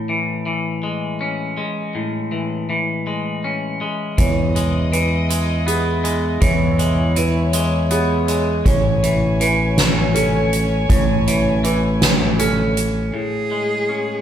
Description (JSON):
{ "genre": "post-rock", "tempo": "54 BPM (dotted quarters)", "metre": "6/8", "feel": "straight", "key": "unclear", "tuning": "A4 = 441 Hz", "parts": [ { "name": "twangy electric guitar", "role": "arpeggios", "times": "0.0-14.2 s", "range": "A2 to C#4", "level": "-22 LUFS", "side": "left 2 dB", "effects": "none" }, { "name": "warm studio string section", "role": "sustained chords", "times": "4.2-13.1 s", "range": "G#3 to G#5", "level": "-26 LUFS", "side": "left 1 dB", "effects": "none" }, { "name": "felt-muted upright piano", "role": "arpeggios", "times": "4.2-13.1 s", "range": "G#4 to C#5", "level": "-25 LUFS", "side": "right 6 dB", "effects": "none" }, { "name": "growling fingered electric bass", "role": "bass", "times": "4.2-13.1 s", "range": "A1 to E2", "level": "-20 LUFS", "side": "equal", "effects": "overdrive" }, { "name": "soft-mallet drum kit", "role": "drums", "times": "4.2-12.9 s", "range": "hi-hat, kick drum, snare drum", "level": "-20 LUFS", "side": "equal", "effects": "none" }, { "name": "clear cello", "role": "melody", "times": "13.1-14.2 s", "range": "G#4", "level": "-21 LUFS", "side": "equal", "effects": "none" } ], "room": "wet large studio reverb, RT60 1.2 s", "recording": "band playing live in one room", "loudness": "-16 LUFS", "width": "side -10 dB against mid", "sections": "0.0-13.1 A section; 13.1-14.2 B section", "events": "none", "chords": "0.0 Amaj7; 4.2 Emaj7; 8.7 Amaj7" }